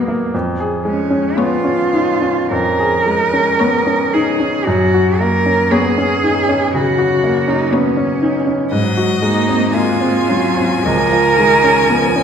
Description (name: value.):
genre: classical, slow romantic movement for piano quartet.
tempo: 50-61 BPM.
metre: 4/4.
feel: rubato.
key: F# major.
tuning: A4 = 442 Hz.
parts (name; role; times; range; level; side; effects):
rich violin; melody; 0.0-12.2 s; C#5 to G#5; -22 LUFS; left 7 dB; none.
warm cello; second line; 0.0-12.2 s; A#3 to A#4; -16 LUFS; right 2 dB; none.
warm baby grand piano; accompaniment; 0.0-12.2 s; C#2 to G#4; -16 LUFS; left 1 dB; none.
warm viola; accompaniment; 0.0-12.2 s; D#3 to A#3; -22 LUFS; right 1 dB; none.
room: wet scoring stage reverb, RT60 1.5 s.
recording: heard from further back in the room.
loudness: -12 LUFS.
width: side -7 dB against mid.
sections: 0.0-12.2 A section.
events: none.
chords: 0.3 C#/E#; 4.7 F#; 8.7 G#7; 10.8 C#.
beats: | 0.33 1.37 2.51 3.60 | 4.66 5.71 6.74 7.72 | 8.72 9.73 10.84 11.88.